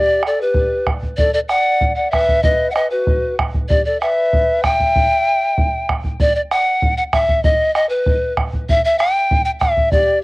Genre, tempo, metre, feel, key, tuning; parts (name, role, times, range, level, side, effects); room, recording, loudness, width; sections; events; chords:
andean folk, Andean ensemble; 96 BPM; 2/4; straight; E minor; A4 = 441 Hz
breathy polished pan flute; melody; 0.0-10.2 s; B4 to G5; -16 LUFS; equal; cassette tape
mellow hollow large quena; second line; 0.0-5.9, 9.9-10.2 s; F#4 to E5; -23 LUFS; left 2 dB; cassette tape
bombo; percussion; 0.2-10.1 s; -19 LUFS; right 1 dB
light reverb; home recording on cassette; -14 LUFS; side -21 dB against mid
0.0-6.2 A section; 6.2-10.2 A section